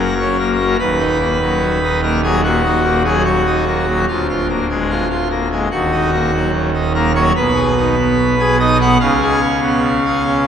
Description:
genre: classical, chorale-style piece for pipe organ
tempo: 73 BPM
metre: 4/4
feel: rubato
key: unclear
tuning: A4 = 441 Hz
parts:
  - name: pipe organ, full organ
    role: solo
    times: 0.0-10.5 s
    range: D1 to F#5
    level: -13 LUFS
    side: equal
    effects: none
room: wet cathedral reverb, RT60 4.5 s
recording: none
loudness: -13 LUFS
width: side -8 dB against mid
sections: 0.0-10.5 A section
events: none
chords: 0.0 F#; 0.8 D#m; 4.1 A#7/D; 5.7 D#m; 7.4 G#m/B; 9.0 C#7

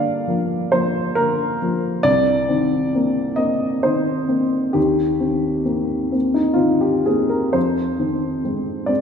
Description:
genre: neoclassical minimalist piano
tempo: 44 BPM (dotted quarters)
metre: 6/8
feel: rubato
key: unclear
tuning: A4 = 440 Hz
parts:
  - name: dark upright piano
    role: solo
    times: 0.0-9.0 s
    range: C2 to F5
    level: -17 LUFS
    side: left 1 dB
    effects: none
room: wet scoring stage reverb, RT60 2.1 s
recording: recorded in a church or concert hall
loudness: -17 LUFS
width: side -7 dB against mid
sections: 0.0-9.0 A section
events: none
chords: 0.0 Gm7; 2.1 Cm7; 4.8 Eb6; 7.6 Fm7

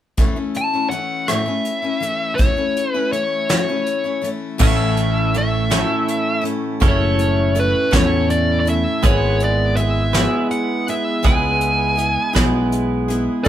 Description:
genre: folk rock and heartland rock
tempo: 54 BPM (dotted quarters)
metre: 6/8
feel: straight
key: A major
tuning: A4 = 440 Hz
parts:
  - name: picked steel-string acoustic guitar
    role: accompaniment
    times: 0.2-13.5 s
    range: A2 to G#4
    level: -23 LUFS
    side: left 4 dB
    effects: none
  - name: soft brush drum kit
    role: drums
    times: 0.2-13.5 s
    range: crash cymbal, hi-hat, kick drum, rim click, snare drum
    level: -20 LUFS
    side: equal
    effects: none
  - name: dark smooth lead guitar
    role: melody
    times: 0.6-13.5 s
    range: B4 to A5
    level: -20 LUFS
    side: left 1 dB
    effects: overdrive
  - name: twelve-string electric guitar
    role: riff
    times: 4.6-13.5 s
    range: A2 to B4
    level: -23 LUFS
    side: right 7 dB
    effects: none
  - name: picked electric bass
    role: bass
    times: 4.6-13.5 s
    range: F#1 to E2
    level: -20 LUFS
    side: equal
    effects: none
  - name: musette accordion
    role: sustained chords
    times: 13.4-13.5 s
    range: C#4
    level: -17 LUFS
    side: right 2 dB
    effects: none
room: moderate studio ambience, RT60 0.5 s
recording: band playing live in one room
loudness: -16 LUFS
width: side -11 dB against mid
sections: 0.2-4.6 A section; 4.6-13.5 B section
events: none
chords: 0.2 A; 9.0 E/G#

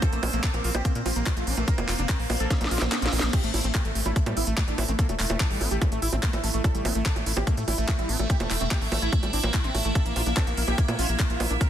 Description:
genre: psychedelic trance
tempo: 145 BPM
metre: 4/4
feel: straight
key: A phrygian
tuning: A4 = 443 Hz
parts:
  - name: wide unison lead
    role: melody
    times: 0.0-11.7 s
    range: A3 to Bb4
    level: -32 LUFS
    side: right 1 dB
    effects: phaser, sidechain pumping, digital delay
  - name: evolving wavetable pad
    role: sustained chords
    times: 0.0-11.7 s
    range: C4 to E5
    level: -34 LUFS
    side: right 2 dB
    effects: phaser, built-in reverb, sidechain pumping
  - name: overdriven acid bass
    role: riff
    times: 0.0-11.7 s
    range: G3 to F4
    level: -35 LUFS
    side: left 1 dB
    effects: distortion, auto-pan, sidechain pumping, dub echo
  - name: electronic kick drum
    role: drums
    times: 0.0-11.7 s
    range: none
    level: -26 LUFS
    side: equal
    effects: none
  - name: garage drum kit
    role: drums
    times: 0.0-11.7 s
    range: bongos, crash cymbal, handclaps, hi-hat, snare drum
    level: -29 LUFS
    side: right 2 dB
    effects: none
  - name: tight sequencer bass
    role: bass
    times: 0.1-11.6 s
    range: E1 to Bb2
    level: -28 LUFS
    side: equal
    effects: none
room: little or no reverb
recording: dense, heavily limited modern master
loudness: -23 LUFS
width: side -10 dB against mid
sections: 0.0-11.7 A section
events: drum fill 2.5-3.3; kick drops out 2.9-3.3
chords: 0.0 Bb5; 3.3 A5; 10.0 Bb5

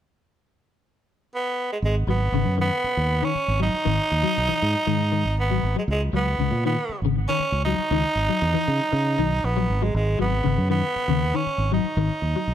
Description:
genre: afrobeat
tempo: 118 BPM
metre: 4/4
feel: straight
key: G# minor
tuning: A4 = 440 Hz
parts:
  - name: growling tenor saxophone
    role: melody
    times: 1.4-12.5 s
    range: G#3 to D#4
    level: -24 LUFS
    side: right 2 dB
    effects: tape echo
  - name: fingered electric bass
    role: bass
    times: 1.8-12.5 s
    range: G#1 to C#3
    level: -24 LUFS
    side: right 1 dB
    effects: none
  - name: clean electric guitar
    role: arpeggios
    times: 2.1-12.5 s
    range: C#3 to F#3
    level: -27 LUFS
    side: left 7 dB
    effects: ensemble chorus, tape echo
room: light reverb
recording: none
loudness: -20 LUFS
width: side -10 dB against mid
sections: 0.0-1.8 A section; 1.8-12.5 B section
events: none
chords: 0.0 N.C.; 1.8 G#m7; 5.9 C#7sus2; 9.9 G#m7

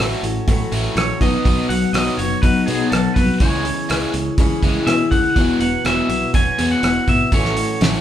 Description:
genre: folk rock and heartland rock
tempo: 123 BPM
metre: 4/4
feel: straight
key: E major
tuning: A4 = 440 Hz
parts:
  - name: picked steel-string acoustic guitar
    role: accompaniment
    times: 0.0-8.0 s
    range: A2 to G#4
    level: -22 LUFS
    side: left 2 dB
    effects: none
  - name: biting overdriven guitar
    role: riff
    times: 0.0-8.0 s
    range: E2 to B3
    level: -22 LUFS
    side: left 1 dB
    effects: none
  - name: fingered electric bass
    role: bass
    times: 0.0-8.0 s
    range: E1 to B2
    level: -25 LUFS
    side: equal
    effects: none
  - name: cloth-damped thuddy drum kit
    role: drums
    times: 0.0-7.9 s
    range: hi-hat, kick drum, rim click, snare drum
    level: -20 LUFS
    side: equal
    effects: none
  - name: pedal steel guitar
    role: melody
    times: 1.0-8.0 s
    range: G#4 to G#5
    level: -22 LUFS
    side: right 1 dB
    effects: none
room: wet studio reverb, RT60 0.7 s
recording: band playing live in one room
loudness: -15 LUFS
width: side -11 dB against mid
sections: 0.0-8.0 A section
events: none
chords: 0.0 A6; 1.2 B; 3.4 C#m; 5.4 Esus2; 7.3 A6

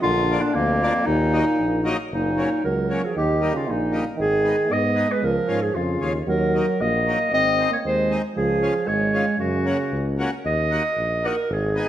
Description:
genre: alpine folk, alpine dance band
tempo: 116 BPM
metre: 2/4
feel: straight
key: F# major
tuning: A4 = 441 Hz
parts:
  - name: warm clarinet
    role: melody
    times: 0.0-11.9 s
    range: Bb3 to D#5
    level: -22 LUFS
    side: equal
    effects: none
  - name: warm euphonium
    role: second line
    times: 0.0-10.1 s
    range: F2 to B#3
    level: -26 LUFS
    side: right 3 dB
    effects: analog delay
  - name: warm tuba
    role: bass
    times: 0.0-11.8 s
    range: F#1 to G#2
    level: -26 LUFS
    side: equal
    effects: none
  - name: accordion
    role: accompaniment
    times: 0.3-11.9 s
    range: F3 to Ab4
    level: -30 LUFS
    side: left 2 dB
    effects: none
room: wet recital hall reverb, RT60 1.6 s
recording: none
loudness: -19 LUFS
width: side -11 dB against mid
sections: 0.0-2.1 A section; 2.1-10.4 B section; 10.4-11.9 A section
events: none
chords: 0.0 Bb; 1.1 Ebm; 2.1 F#; 3.2 D#; 4.2 G#m; 5.2 C#; 6.3 D#m; 7.3 G#; 8.4 C#; 9.4 F#; 10.4 Ebm

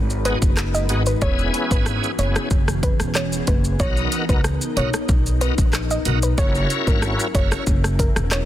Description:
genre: dancehall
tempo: 93 BPM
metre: 4/4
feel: straight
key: B major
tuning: A4 = 439 Hz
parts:
  - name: glassy FM pad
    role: sustained chords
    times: 0.0-8.5 s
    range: E3 to B4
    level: -28 LUFS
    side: left 2 dB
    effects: ensemble chorus, built-in reverb, sidechain pumping
  - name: upright bass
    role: bass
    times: 0.0-8.5 s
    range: E1 to C#2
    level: -22 LUFS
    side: equal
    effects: none
  - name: pop drum kit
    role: drums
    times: 0.1-8.5 s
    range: handclaps, hi-hat, kick drum, rim click, shaker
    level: -21 LUFS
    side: equal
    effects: none
  - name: bright tonewheel organ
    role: accompaniment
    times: 0.2-7.6 s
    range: B3 to A#4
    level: -26 LUFS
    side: left 1 dB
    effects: chorus vibrato, slow rotary speaker
  - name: soft round pluck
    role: melody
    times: 0.3-8.4 s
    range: A#4 to D#5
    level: -28 LUFS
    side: right 1 dB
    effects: chorus, digital delay
room: digital ambience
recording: dense, heavily limited modern master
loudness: -17 LUFS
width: side -13 dB against mid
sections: 0.0-8.5 A section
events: none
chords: 0.0 G#m7; 1.2 E6; 3.8 Bmaj7; 6.4 F#7

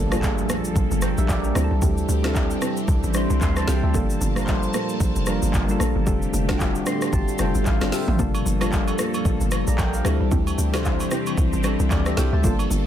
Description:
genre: amapiano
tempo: 113 BPM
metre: 4/4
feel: swing 58% on 16ths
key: G dorian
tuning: A4 = 439 Hz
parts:
  - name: soft electric-piano-like synth keys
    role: accompaniment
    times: 0.0-12.9 s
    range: G3 to C6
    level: -26 LUFS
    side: left 1 dB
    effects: chorus
  - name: string machine, cellos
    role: sustained chords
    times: 0.0-12.9 s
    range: D3 to A5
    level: -29 LUFS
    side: equal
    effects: phaser, ensemble chorus, sidechain pumping
  - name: hollow log drum bass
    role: bass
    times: 0.0-12.9 s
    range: F1 to D2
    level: -23 LUFS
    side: equal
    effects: none
  - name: impact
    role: sound effects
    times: 0.0-1.8 s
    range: none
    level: -34 LUFS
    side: equal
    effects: none
  - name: deep mellow chord stab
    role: stabs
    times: 0.1-12.5 s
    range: Bb3 to A4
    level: -32 LUFS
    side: right 1 dB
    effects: chorus, phaser, digital delay
  - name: deep house drum kit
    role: drums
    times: 0.1-12.9 s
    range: handclaps, hi-hat, kick drum, rim click, shaker, snare drum, toms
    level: -24 LUFS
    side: equal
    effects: soft clipping on snare
  - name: agogo bells and woodblock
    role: percussion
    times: 8.3-12.7 s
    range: none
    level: -35 LUFS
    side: right 4 dB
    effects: none
room: little or no reverb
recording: dense, heavily limited modern master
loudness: -19 LUFS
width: side -10 dB against mid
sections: 0.0-12.9 A section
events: impact 0.0-1.8; synth keys fill 6.6-8.2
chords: 0.0 Gm9; 1.6 D9sus4; 3.9 Gm9; 6.1 F69; 8.2 Gm9; 10.1 D9sus4

